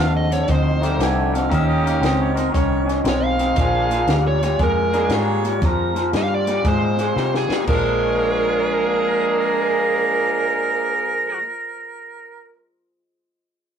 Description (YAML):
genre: electric blues shuffle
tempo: 117 BPM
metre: 4/4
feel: swing 66% on 8ths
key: Bb mixolydian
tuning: A4 = 441 Hz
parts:
  - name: dark smooth lead guitar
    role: melody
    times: 0.0-11.4 s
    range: Ab4 to F5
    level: -22 LUFS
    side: right 2 dB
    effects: overdrive
  - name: electric guitar through a small old amp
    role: riff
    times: 0.0-11.4 s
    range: F2 to D4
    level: -22 LUFS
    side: left 2 dB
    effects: spring reverb
  - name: warm horn section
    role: stabs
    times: 0.0-11.4 s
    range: G3 to Ab4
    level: -24 LUFS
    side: right 2 dB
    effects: none
  - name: vintage muted fingered electric bass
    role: bass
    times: 0.0-11.4 s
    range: Bb1 to C3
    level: -22 LUFS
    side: equal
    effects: none
  - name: compact cocktail drum kit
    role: drums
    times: 0.3-7.8 s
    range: crash cymbal, hi-hat, kick drum, snare drum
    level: -24 LUFS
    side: left 1 dB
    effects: none
  - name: mellow harmonica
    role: second line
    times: 1.0-12.5 s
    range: Ab4 to Ab5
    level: -25 LUFS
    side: right 3 dB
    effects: none
room: moderate studio reverb, RT60 0.6 s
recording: rough rehearsal-room recording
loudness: -17 LUFS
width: side -8 dB against mid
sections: 0.0-7.7 A section; 7.7-11.8 B section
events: drum fill 7.2-7.7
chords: 0.0 F7; 1.5 Eb7; 3.6 Bb7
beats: 0.49 1.00 | 1.51 2.03 2.54 3.05 | 3.57 4.08 4.59 5.11 | 5.62 6.13 6.65 7.16 | 7.67 8.19 8.70 9.21 | 9.72 10.23 10.75 11.26